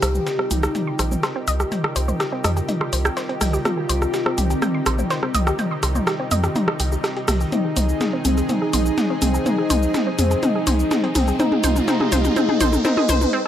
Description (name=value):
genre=melodic techno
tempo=124 BPM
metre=4/4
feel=straight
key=C minor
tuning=A4 = 440 Hz
part: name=expressive synth lead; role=melody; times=0.0-13.3 s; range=C4 to G4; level=-24 LUFS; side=equal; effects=analog chorus, tape echo
part: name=lush unison pad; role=sustained chords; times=0.0-13.3 s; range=C3 to Ab4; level=-30 LUFS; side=equal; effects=chorus
part: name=analog pluck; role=arpeggios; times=0.0-13.5 s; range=C4 to C6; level=-26 LUFS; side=equal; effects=chorus, tape echo
part: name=gritty driven synth bass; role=bass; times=0.0-13.3 s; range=Bb1 to F2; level=-22 LUFS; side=equal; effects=none
part: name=deep house drum kit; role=drums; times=0.0-13.3 s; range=hi-hat, rim click, shaker, toms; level=-22 LUFS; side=left 1 dB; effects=none
part: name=dusty soul sampler-style drum kit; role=drums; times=0.0-13.2 s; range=hi-hat, snare drum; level=-34 LUFS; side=equal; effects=high-pass filter on hats, high-pass filter on snare
part: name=warbly tape-like pad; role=texture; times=0.0-13.3 s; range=Eb4 to Eb5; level=-33 LUFS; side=right 1 dB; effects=none
part: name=riser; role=sound effects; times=10.1-13.3 s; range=none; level=-30 LUFS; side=right 2 dB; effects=none
room=little or no reverb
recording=dry, gritty hardware recording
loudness=-18 LUFS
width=side -10 dB against mid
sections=0.0-13.5 A section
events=build-up 0.0-13.5; drum fill 0.0-13.3; filter sweep on synth arpeggio sound 0.0-13.5; riser 10.1-13.3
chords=0.0 Cm; 7.5 Fm7